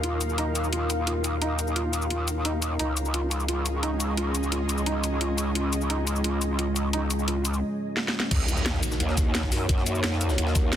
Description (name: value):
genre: dark technical drum and bass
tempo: 174 BPM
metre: 4/4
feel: straight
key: Eb minor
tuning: A4 = 440 Hz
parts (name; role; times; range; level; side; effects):
- dark analog pad; sustained chords; 0.0-10.8 s; Ab3 to Db5; -32 LUFS; equal; chorus, sidechain pumping
- felt-muted upright piano; arpeggios; 0.0-7.4 s; Eb4 to F4; -33 LUFS; right 1 dB; sidechain pumping, low-pass filter, digital delay
- growl bass; bass; 0.0-10.8 s; Db2 to Gb2; -28 LUFS; equal; chorus, overdrive, sidechain pumping
- drum and bass drum kit; drums; 0.0-10.8 s; cabasa, crash cymbal, hi-hat, snare drum; -29 LUFS; left 1 dB; overdrive, small room ambience
- ethereal airy pad; texture; 0.0-7.6 s; Db4 to F5; -33 LUFS; left 1 dB; ensemble chorus, built-in reverb, sidechain pumping
- electronic kick drum; drums; 8.3-10.6 s; none; -24 LUFS; equal; overdrive, small room ambience
- jungle sampler-style drum kit; drums; 8.3-10.8 s; hi-hat, snare drum; -37 LUFS; equal; none
- impact; sound effects; 8.3-9.7 s; none; -32 LUFS; equal; none
room: moderate lush hall reverb, RT60 2.0 s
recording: dense, heavily limited modern master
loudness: -24 LUFS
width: side -10 dB against mid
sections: 0.0-8.3 A section; 8.3-10.8 B section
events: drum fill 8.0-8.3; drop 8.3-10.8; impact 8.3-9.7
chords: 0.0 Ebm7; 2.8 Db; 8.3 Ebm7